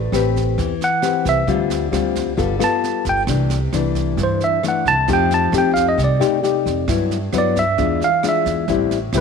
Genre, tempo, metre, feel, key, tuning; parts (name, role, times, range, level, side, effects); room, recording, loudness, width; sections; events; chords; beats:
bossa nova; 133 BPM; 4/4; straight; G major; A4 = 441 Hz
nylon-string guitar; accompaniment; 0.0-9.2 s; G2 to B4; -20 LUFS; left 10 dB
upright bass; bass; 0.0-9.2 s; G1 to G2; -22 LUFS; right 2 dB
jazz brush drum kit; drums; 0.1-9.2 s; kick drum, rim click, snare drum; -28 LUFS; right 7 dB
tine electric piano; melody; 0.8-9.2 s; C5 to A5; -19 LUFS; right 3 dB; medium stereo tremolo
light reverb, studio reverb; 1960s-style stereo with parts hard left and right; -16 LUFS; side -6 dB against mid
0.0-9.2 A section
tine electric piano solo 0.0-9.2
0.0 Am9; 1.5 Dm7; 2.4 G9; 3.3 C69; 5.1 F9; 6.9 G6; 7.8 E7b9; 8.7 Am7
0.13 0.58 1.03 | 1.48 1.93 2.38 2.83 | 3.28 3.73 4.18 4.63 | 5.08 5.53 5.98 6.43 | 6.88 7.33 7.79 8.23 | 8.69 9.14